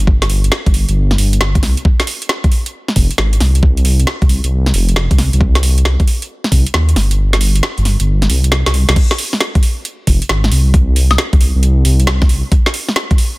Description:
UK garage, two-step garage; 135 BPM; 4/4; swing 66% on 16ths; A4 = 440 Hz
dark detuned saw bass; bass; 0.0-12.4 s; F1 to Eb2; -12 LUFS; equal
garage drum kit; drums; 0.0-13.3 s; crash cymbal, hi-hat, snare drum, woodblock; -17 LUFS; equal; overdrive
electronic kick drum; drums; 0.1-13.2 s; -12 LUFS; equal; overdrive
little or no reverb; dense, heavily limited modern master; -11 LUFS; side -22 dB against mid
0.0-9.0 A section; 9.0-13.4 B section
kick drops out 7.2-9.0; drum fill 8.6-9.0; drop 9.0-13.4
| 0.07 0.52 0.96 1.41 | 1.85 2.30 2.74 3.19 | 3.63 4.07 4.52 4.96 | 5.41 5.85 6.30 6.74 | 7.18 7.63 8.07 8.52 | 8.96 9.41 9.85 10.30 | 10.74 11.19 11.63 12.07 | 12.52 12.96

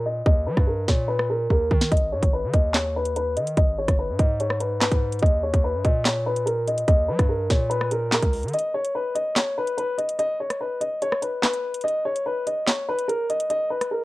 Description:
hip hop, drill; 145 BPM; 4/4; half-time; A4 = 440 Hz
dark baby grand piano; melody; 0.0-14.0 s; A#4 to D#5; -24 LUFS; left 1 dB; low-pass filter, cassette tape
hard-hitting 808-style bass; bass; 0.0-8.5 s; G1 to G3; -28 LUFS; equal
drill drum kit; drums; 0.3-13.9 s; handclaps, hi-hat, kick drum, rim click, snare drum; -21 LUFS; equal; cassette tape
light reverb; home recording on cassette; -21 LUFS; side -19 dB against mid
0.0-14.0 A section
break 0.0-1.9, 8.5-14.0; filter sweep on grand piano 0.0-8.5; drum fill 1.5-1.9; kick muted 13.5-14.0
0.0 D#; 1.9 G#m; 5.2 D#; 8.5 N.C.
| 0.26 0.67 1.09 1.50 | 1.92 2.33 2.74 3.16 | 3.57 3.98 4.40 4.81 | 5.23 5.64 6.05 6.47 | 6.88 7.29 7.71 8.12 | 8.54 8.95 9.36 9.78 | 10.19 10.61 11.02 11.43 | 11.85 12.26 12.67 13.09 | 13.50 13.91

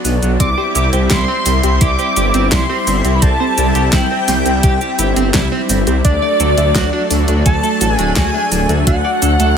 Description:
synthwave; 85 BPM; 4/4; straight; A4 = 439 Hz
lush unison pad; sustained chords; 0.0-9.6 s; F#3 to E4; -21 LUFS; left 1 dB; chorus, sidechain pumping
clean electric guitar; riff; 0.0-9.5 s; B3 to D5; -25 LUFS; right 4 dB; lush chorus, ping-pong delay
wide detuned saw bass; bass; 0.0-9.5 s; D1 to D2; -16 LUFS; equal; chorus
pop drum kit; drums; 0.0-9.5 s; handclaps, hi-hat, shaker, snare drum; -20 LUFS; equal
wide unison lead; melody; 0.4-9.6 s; D5 to D6; -19 LUFS; equal; vintage 12-bit sampler grit, tape echo
string machine, violins; second line; 0.4-9.6 s; D5 to D6; -24 LUFS; equal; ensemble chorus
analog pluck; arpeggios; 0.4-9.5 s; F#3 to G4; -22 LUFS; right 2 dB; chorus, phaser, ping-pong delay
electronic kick drum; drums; 0.4-9.0 s; -15 LUFS; equal
light reverb; -12 LUFS; side -7 dB against mid
0.0-9.6 A section
0.4 C; 6.0 D
| 0.40 1.11 1.81 2.52 | 3.22 3.93 4.63 5.34 | 6.05 6.75 7.46 8.16 | 8.87 9.58

